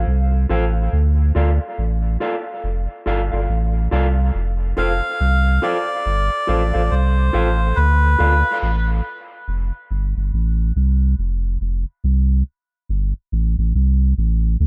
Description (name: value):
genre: dub reggae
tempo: 70 BPM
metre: 4/4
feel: swing 61% on 16ths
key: unclear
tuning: A4 = 440 Hz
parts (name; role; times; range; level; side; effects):
- warm sub bass; bass; 0.0-14.7 s; F1 to D2; -19 LUFS; equal; none
- mellow electric guitar; accompaniment; 0.5-8.3 s; F4 to F5; -27 LUFS; equal; spring reverb, dub echo
- melodica; melody; 4.8-8.6 s; B4 to F5; -24 LUFS; equal; dub echo
room: little or no reverb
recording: echo-heavy mix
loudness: -19 LUFS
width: mono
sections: 0.0-4.3 A section; 4.3-14.7 B section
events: none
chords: 0.0 F; 0.9 Dm; 4.3 F; 7.8 Dm; 11.2 F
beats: 0.06 | 0.92 1.77 2.63 3.49 | 4.34 5.20 6.05 6.91 | 7.76 8.61 9.47 10.32 | 11.18 12.03 12.88 13.74 | 14.59